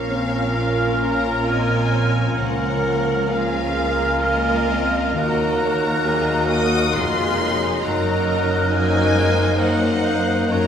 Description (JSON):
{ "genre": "classical", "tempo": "67 BPM", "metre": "3/4", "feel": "uneven beats, rubato", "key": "unclear", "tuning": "A4 = 437 Hz", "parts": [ { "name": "rich studio violin section", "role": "melody", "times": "0.0-10.7 s", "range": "Eb5 to Eb6", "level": "-27 LUFS", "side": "left 3 dB", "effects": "none" }, { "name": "mellow clarinet", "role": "second line", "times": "0.0-10.7 s", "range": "Db4 to Eb4", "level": "-29 LUFS", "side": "left 2 dB", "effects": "none" }, { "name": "mellow hollow silver concert flute", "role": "second line", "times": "0.0-10.7 s", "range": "F6 to Gb6", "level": "-28 LUFS", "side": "left 1 dB", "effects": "none" }, { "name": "rich studio violin section", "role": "second line", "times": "0.0-10.7 s", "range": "Gb4 to F5", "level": "-27 LUFS", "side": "left 1 dB", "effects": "none" }, { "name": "warm oboe", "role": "second line", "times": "0.0-10.7 s", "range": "Bb4 to Db5", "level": "-28 LUFS", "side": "right 2 dB", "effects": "none" }, { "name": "dark bassoon", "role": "accompaniment", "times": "0.0-10.7 s", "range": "Bb3", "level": "-27 LUFS", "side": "right 3 dB", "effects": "none" }, { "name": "rich studio viola section", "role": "accompaniment", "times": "0.0-10.7 s", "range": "Gb3 to Gb4", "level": "-26 LUFS", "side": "right 1 dB", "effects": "none" }, { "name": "mellow French horn section", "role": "sustained chords", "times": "0.0-10.7 s", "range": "F3 to Eb4", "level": "-30 LUFS", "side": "left 1 dB", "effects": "none" }, { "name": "concert harp", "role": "arpeggios", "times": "0.0-10.7 s", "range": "Gb2 to Bb5", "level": "-29 LUFS", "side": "left 4 dB", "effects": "none" }, { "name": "rich studio cello section", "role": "bass", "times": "0.0-10.7 s", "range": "Db2 to Bb2", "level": "-27 LUFS", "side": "right 1 dB", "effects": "none" }, { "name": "rich studio double bass section", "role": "bass", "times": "0.0-10.7 s", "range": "F1 to Eb2", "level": "-26 LUFS", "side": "right 2 dB", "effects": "none" } ], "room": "wet recital hall reverb, RT60 1.5 s", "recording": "recorded in a church or concert hall", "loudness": "-17 LUFS", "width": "side -8 dB against mid", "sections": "0.0-10.7 A section", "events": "none", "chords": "0.0 Bbm; 2.4 Bbm/Db; 5.2 Ebm; 7.8 Ebm/Gb", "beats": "0.56 1.48 | 2.40 3.31 4.21 | 5.17 6.08 6.97 | 7.84 8.69 9.59 | 10.51" }